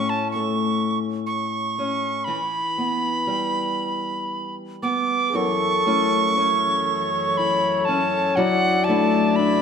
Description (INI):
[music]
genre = celtic folk, Celtic slow air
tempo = 56-64 BPM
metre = 3/4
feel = rubato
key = unclear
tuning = A4 = 440 Hz
[part]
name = bright wooden whistle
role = melody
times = 0.0-9.6 s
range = F#5 to D6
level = -22 LUFS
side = right 4 dB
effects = none
[part]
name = fingerpicked steel-string acoustic guitar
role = accompaniment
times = 0.0-9.6 s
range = F#2 to E4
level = -24 LUFS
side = left 3 dB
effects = none
[part]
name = warm flugelhorn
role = second line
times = 5.3-9.6 s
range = G#4 to D5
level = -25 LUFS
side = left 6 dB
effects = none
[part]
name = rich chamber string section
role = sustained chords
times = 5.3-9.6 s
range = F#2 to A4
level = -31 LUFS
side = right 1 dB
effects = none
[sound]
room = moderate scoring stage reverb, RT60 1.8 s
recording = none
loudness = -19 LUFS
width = side -7 dB against mid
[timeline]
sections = 0.0-5.4 A section; 5.4-9.6 B section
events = none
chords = 0.0 A; 2.3 Em; 5.4 F#m7; 8.4 Dadd9/F#